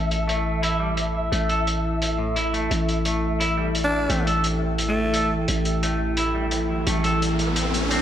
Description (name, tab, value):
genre	half-time drum and bass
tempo	173 BPM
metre	4/4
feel	swing 53% on 16ths, half-time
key	unclear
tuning	A4 = 439 Hz
part	dark analog pad	sustained chords	0.0-8.0 s	E3 to A5	-28 LUFS	equal	chorus
part	growling 808-style bass	bass	0.0-8.0 s	A1	-26 LUFS	equal	none
part	flickering grainy texture	texture	0.0-8.0 s	E5	-32 LUFS	left 1 dB	built-in reverb
part	hi-hat	drums	0.1-8.0 s	none	-29 LUFS	equal	low-pass filter on hats, low-pass filter on snare, low-pass filter on room
part	clean electric guitar	arpeggios	0.3-8.0 s	A2 to A4	-27 LUFS	right 1 dB	vintage 12-bit sampler grit, low-pass filter, digital delay
part	growling alto saxophone	melody	3.8-5.4 s	A3 to D4	-26 LUFS	equal	digital delay
part	riser	sound effects	6.5-8.0 s	none	-28 LUFS	equal	none
room	moderate lush hall reverb, RT60 1.9 s, small room ambience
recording	bright 1980s-style digital production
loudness	-20 LUFS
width	side -10 dB against mid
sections	0.0-8.0 A section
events	riser 6.5-8.0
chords	0.0 A5